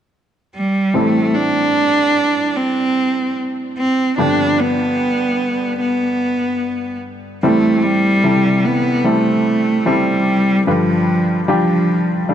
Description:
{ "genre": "pop", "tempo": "74 BPM", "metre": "4/4", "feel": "straight", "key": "A minor", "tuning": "A4 = 438 Hz", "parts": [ { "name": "clear cello", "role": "melody", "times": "0.6-12.3 s", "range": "F3 to D4", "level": "-16 LUFS", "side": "right 1 dB", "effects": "none" }, { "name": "clear baby grand piano", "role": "accompaniment", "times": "0.9-12.3 s", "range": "G2 to B4", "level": "-19 LUFS", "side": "left 1 dB", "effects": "none" } ], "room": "moderate lush hall reverb, RT60 2.5 s", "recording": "dark, warm production", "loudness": "-14 LUFS", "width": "side -9 dB against mid", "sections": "0.9-7.4 A section; 7.4-12.3 B section", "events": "none", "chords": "0.0 N.C.; 0.9 Am7; 4.2 G7; 7.4 Am7; 10.7 G7", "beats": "0.13 | 0.94 1.75 2.56 3.37 | 4.18 4.99 5.80 6.62 | 7.43 8.24 9.05 9.86 | 10.67 11.48 12.29" }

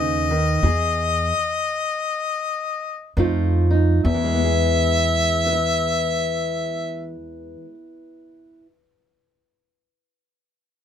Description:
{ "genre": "acoustic country blues, solo or duo", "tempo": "67-73 BPM", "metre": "4/4", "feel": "swing 61% on 8ths", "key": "E major", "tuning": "A4 = 440 Hz", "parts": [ { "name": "warm harmonica", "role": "melody", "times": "0.0-7.1 s", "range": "D#5 to E5", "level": "-22 LUFS", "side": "left 2 dB", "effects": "none" }, { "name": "fingerpicked steel-string acoustic guitar", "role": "accompaniment", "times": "0.0-8.7 s", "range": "E2 to E5", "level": "-24 LUFS", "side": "left 1 dB", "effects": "none" }, { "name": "upright bass", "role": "bass", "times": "0.0-7.1 s", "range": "D#2 to F2", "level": "-22 LUFS", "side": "equal", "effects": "none" } ], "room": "light reverb", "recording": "close, detailed microphones", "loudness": "-19 LUFS", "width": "side -8 dB against mid", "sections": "0.0-4.0 A section; 4.0-7.6 B section", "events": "slowing down 0.0-4.0; stop 0.6-3.2", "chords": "0.0 B; 0.6 E; 3.2 F7; 4.0 E", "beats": "| 0.62 1.45 2.30 3.16 | 4.04 4.93 5.82 6.71" }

